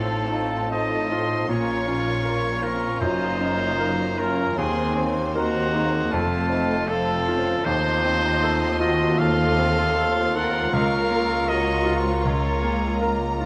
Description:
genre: classical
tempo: 78 BPM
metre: 4/4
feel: rubato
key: Bb minor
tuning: A4 = 440 Hz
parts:
  - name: clear grand piano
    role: melody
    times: 0.0-13.5 s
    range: Db2 to C5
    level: -30 LUFS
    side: equal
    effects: none
  - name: warm studio violin section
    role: melody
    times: 0.0-13.5 s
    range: F5 to Db6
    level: -39 LUFS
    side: equal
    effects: none
  - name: clear clarinet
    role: second line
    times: 0.0-13.5 s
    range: Db4 to A4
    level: -34 LUFS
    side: equal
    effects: none
  - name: mellow hollow silver concert flute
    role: second line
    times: 0.0-13.5 s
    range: A5 to Db6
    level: -36 LUFS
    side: equal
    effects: none
  - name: warm studio violin section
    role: second line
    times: 0.0-13.5 s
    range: A3 to Eb5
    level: -36 LUFS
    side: equal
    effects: none
  - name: rich studio viola section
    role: accompaniment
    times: 0.0-13.0 s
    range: A3 to Bb4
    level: -34 LUFS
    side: equal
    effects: none
  - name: warm bassoon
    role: accompaniment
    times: 0.0-13.5 s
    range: Bb3 to F4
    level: -35 LUFS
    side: equal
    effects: none
  - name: mellow French horn section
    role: sustained chords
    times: 0.0-13.5 s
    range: A3 to F4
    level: -36 LUFS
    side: equal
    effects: none
  - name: bright trumpet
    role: stabs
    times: 0.0-13.0 s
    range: F4 to Gb5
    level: -28 LUFS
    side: equal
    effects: none
  - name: clear studio double bass section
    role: bass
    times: 0.0-13.5 s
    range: F1 to Eb2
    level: -32 LUFS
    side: equal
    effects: none
  - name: rich studio cello section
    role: bass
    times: 0.0-13.5 s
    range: Db2 to Bb2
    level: -34 LUFS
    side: equal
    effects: none
room: moderate concert hall reverb, RT60 2.1 s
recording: close, detailed microphones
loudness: -22 LUFS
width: mono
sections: 0.0-13.5 A section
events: none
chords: 0.0 F7/A; 1.5 Bbm; 3.0 Gbmaj7; 4.6 Cm7b5/Eb; 6.1 F; 7.7 F7/Eb; 10.7 Bbm/Db

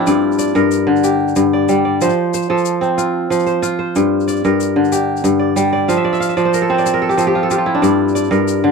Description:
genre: west african traditional, West African string and xylophone music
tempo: 124 BPM (dotted quarters)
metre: 12/8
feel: straight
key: G dorian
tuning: A4 = 439 Hz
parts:
  - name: kora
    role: arpeggios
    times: 0.0-8.7 s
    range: G2 to F5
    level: -13 LUFS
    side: equal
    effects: none
  - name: tube shaker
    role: percussion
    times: 0.1-8.6 s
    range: none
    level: -29 LUFS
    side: left 19 dB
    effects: none
room: little or no reverb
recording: dry, close 1970s-style studio recording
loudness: -13 LUFS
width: side -5 dB against mid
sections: 0.0-8.7 A section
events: kora fill 5.9-7.8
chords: 0.1 Gm; 2.0 F; 4.0 Gm; 5.9 F5; 7.8 Gm

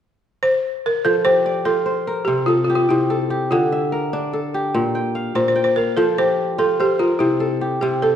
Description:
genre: west african traditional, West African string and xylophone music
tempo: 98 BPM (dotted quarters)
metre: 12/8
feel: straight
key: F major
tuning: A4 = 440 Hz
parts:
  - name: balafon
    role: melody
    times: 0.4-8.2 s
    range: E4 to C5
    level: -18 LUFS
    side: equal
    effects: none
  - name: kora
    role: arpeggios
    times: 1.1-8.2 s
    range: Bb2 to G5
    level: -21 LUFS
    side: left 1 dB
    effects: none
room: moderate scoring stage reverb, RT60 1.8 s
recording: recorded in a church or concert hall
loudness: -17 LUFS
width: side -9 dB against mid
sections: 0.0-1.0 A section; 1.0-8.2 B section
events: none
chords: 0.0 N.C.; 1.0 F; 2.3 C; 3.5 Dm; 4.7 Bb5; 6.0 F5; 7.2 C

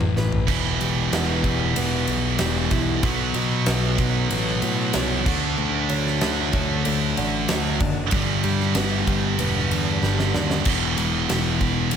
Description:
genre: quiet-loud alternative rock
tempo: 94 BPM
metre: 4/4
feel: straight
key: E minor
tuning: A4 = 438 Hz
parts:
  - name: fingerpicked steel-string acoustic guitar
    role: arpeggios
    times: 0.0-10.7 s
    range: G2 to B4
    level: -30 LUFS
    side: right 4 dB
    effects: none
  - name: thick fuzz guitar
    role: riff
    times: 0.0-12.0 s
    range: E2 to D4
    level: -26 LUFS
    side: left 9 dB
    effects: distortion
  - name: fuzz picked electric bass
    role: bass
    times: 0.0-12.0 s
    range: E1 to B2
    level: -27 LUFS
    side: equal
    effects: overdrive
  - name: huge arena drum kit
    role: drums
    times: 0.0-12.0 s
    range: crash cymbal, kick drum, ride cymbal, snare drum, toms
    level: -26 LUFS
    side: equal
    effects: none
  - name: scooped high-gain guitar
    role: riff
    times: 0.5-12.0 s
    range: E2 to D4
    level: -25 LUFS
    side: right 12 dB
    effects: distortion
room: light reverb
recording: none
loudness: -20 LUFS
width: side -8 dB against mid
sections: 0.5-12.0 A section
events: drum fill 0.2-0.5, 10.0-10.7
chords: 0.5 Em; 3.0 B5; 5.3 D; 8.1 G; 10.7 E5

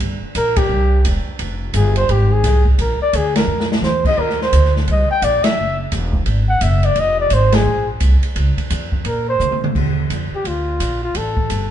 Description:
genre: jazz, small-group swing and bop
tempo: 172 BPM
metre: 4/4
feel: swing 62% on 8ths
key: unclear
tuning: A4 = 440 Hz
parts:
  - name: upright bass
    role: bass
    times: 0.0-11.7 s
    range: E1 to C3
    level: -17 LUFS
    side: equal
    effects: none
  - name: open jazz drum kit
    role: drums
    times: 0.0-11.6 s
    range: crash cymbal, hi-hat, kick drum, ride cymbal, snare drum, toms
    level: -22 LUFS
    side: right 1 dB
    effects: none
  - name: mellow flugelhorn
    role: melody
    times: 0.4-11.7 s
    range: F4 to G5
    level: -18 LUFS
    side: left 1 dB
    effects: none
room: moderate stone room reverb, RT60 1.3 s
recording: band playing live in one room, nothing above 10.5 kHz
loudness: -14 LUFS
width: side -10 dB against mid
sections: 0.0-9.7 A section; 9.7-11.7 B section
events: band accent 0.5, 3.3, 5.4, 7.5; drum fill 3.5-3.8, 9.4-9.7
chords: 0.0 Gm; 0.7 C; 1.4 Fm; 2.8 Bb; 4.2 Eb5; 5.6 F#sus2; 7.0 Fmadd11; 8.4 Db; 9.1 Bbsus2; 9.7 Ebsus2; 11.1 Gsus2

